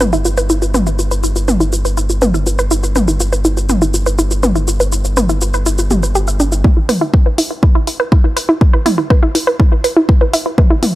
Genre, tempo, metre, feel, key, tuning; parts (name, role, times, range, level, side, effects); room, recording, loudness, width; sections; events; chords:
melodic techno; 122 BPM; 4/4; straight; E phrygian; A4 = 439 Hz
wide unison pluck; arpeggios; 0.0-10.9 s; D4 to E5; -16 LUFS; right 1 dB; sidechain pumping, tape echo
gritty driven synth bass; bass; 0.0-6.6 s; G1; -16 LUFS; equal; sidechain pumping
house drum kit; drums; 0.0-10.9 s; hi-hat, shaker, toms; -18 LUFS; left 1 dB; overdrive, studio reverb
electronic kick drum; drums; 6.6-10.7 s; -10 LUFS; equal; overdrive, studio reverb
digital ambience; dry, gritty hardware recording; -11 LUFS; side -16 dB against mid
0.0-6.6 A section; 6.6-11.0 B section
build-up 6.6-11.0
0.0 G; 6.6 E5